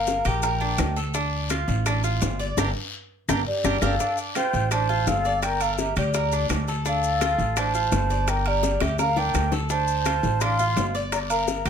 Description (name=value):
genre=latin, Cuban son and guajira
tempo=168 BPM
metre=4/4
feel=straight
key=D minor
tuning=A4 = 436 Hz
part: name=hollow alto ocarina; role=melody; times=0.0-1.0, 3.5-11.7 s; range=D5 to C6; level=-26 LUFS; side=equal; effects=plate reverb
part: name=mellow silver concert flute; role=second line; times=0.0-1.0, 3.5-11.7 s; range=G4 to F5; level=-30 LUFS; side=left 1 dB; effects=none
part: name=Cuban tres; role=arpeggios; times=0.0-11.7 s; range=D4 to D5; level=-28 LUFS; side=right 3 dB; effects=none
part: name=upright bass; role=bass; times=0.0-11.7 s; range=G1 to D2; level=-26 LUFS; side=equal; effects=none
part: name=bongos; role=percussion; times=0.1-11.7 s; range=none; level=-31 LUFS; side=left 7 dB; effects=none
part: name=guiro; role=percussion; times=0.1-11.7 s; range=none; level=-38 LUFS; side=left 6 dB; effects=none
part: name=maracas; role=percussion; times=0.1-11.7 s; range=none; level=-36 LUFS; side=left 10 dB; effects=none
part: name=timbales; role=percussion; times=0.1-11.7 s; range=none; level=-34 LUFS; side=right 6 dB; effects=none
part: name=claves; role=percussion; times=0.3-11.7 s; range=none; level=-37 LUFS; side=left 4 dB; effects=none
room=light reverb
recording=close, detailed microphones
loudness=-21 LUFS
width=side -7 dB against mid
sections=0.0-4.0 A section; 4.0-11.7 A section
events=drum fill 2.6-4.0, 8.6-9.7; band accent 2.6-4.0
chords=0.0 Gm; 1.1 Dm; 2.6 Gm; 4.0 Dm7; 5.4 Gm; 6.9 Dm7; 8.3 Gm; 9.7 Dm7; 11.1 Gm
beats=0.08 0.43 0.79 | 1.15 1.51 1.86 2.22 | 2.58 2.93 3.29 3.65 | 4.00 4.36 4.72 5.08 | 5.43 5.79 6.14 6.50 | 6.86 7.21 7.57 7.92 | 8.28 8.64 8.99 9.35 | 9.70 10.06 10.42 10.77 | 11.13 11.48